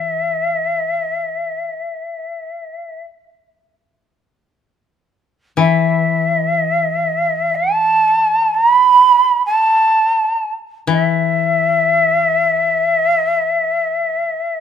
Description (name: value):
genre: japanese traditional, Japanese chamber music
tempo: free time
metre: none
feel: none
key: unclear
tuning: A4 = 440 Hz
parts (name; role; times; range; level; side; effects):
- breathy shakuhachi; melody; 0.0-14.6 s; E5 to B5; -14 LUFS; right 1 dB; none
- koto; accompaniment; 0.0-1.7, 5.6-14.3 s; E3; -20 LUFS; left 7 dB; none
room: light reverb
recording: close, detailed microphones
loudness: -13 LUFS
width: side -8 dB against mid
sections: 0.0-4.3 A section; 4.3-14.6 A section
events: none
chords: none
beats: free time